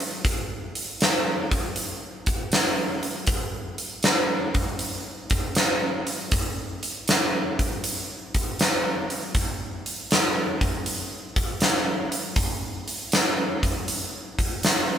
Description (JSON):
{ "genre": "rock", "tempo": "79 BPM", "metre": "4/4", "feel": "swing 67% on 8ths", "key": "none", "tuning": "none", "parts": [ { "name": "huge arena drum kit", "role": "drums", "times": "0.0-14.9 s", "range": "hi-hat, kick drum, snare drum", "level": "-23 LUFS", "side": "equal", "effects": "none" } ], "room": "little or no reverb", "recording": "band playing live in one room", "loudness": "-23 LUFS", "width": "side -9 dB against mid", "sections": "0.0-15.0 A section", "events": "none", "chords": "none", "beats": "| 0.24 1.00 1.76 2.52 | 3.28 4.04 4.80 5.55 | 6.31 7.07 7.83 8.58 | 9.34 10.10 10.85 11.61 | 12.36 13.12 13.87 14.62" }